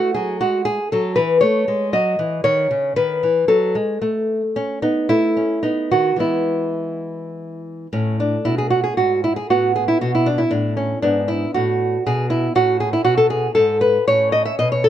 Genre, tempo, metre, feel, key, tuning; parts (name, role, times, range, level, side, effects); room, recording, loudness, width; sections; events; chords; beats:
classical, baroque-style dance for nylon-string guitar; 103-122 BPM; 3/4; rubato; E major, A major from 7.9 s; A4 = 439 Hz
nylon-string guitar; solo; 0.0-14.9 s; G#2 to E5; -16 LUFS; equal
light reverb; -16 LUFS; side -11 dB against mid
0.0-7.9 A section; 7.9-14.9 A section
0.0 A5; 1.4 F#m; 3.0 B7/D#; 4.6 N.C.; 5.1 A; 5.6 B; 6.2 E; 7.9 Bm13; 9.5 A69; 11.0 G#m7b5; 12.6 A; 14.1 Aadd9
0.42 0.93 | 1.43 1.94 2.47 | 2.98 3.50 4.03 | 4.56 5.09 5.64 | 6.21 6.79 7.36 | 7.92 8.45 8.97 | 9.49 10.00 10.52 | 11.03 11.54 12.05 | 12.56 13.05 13.56 | 14.07 14.59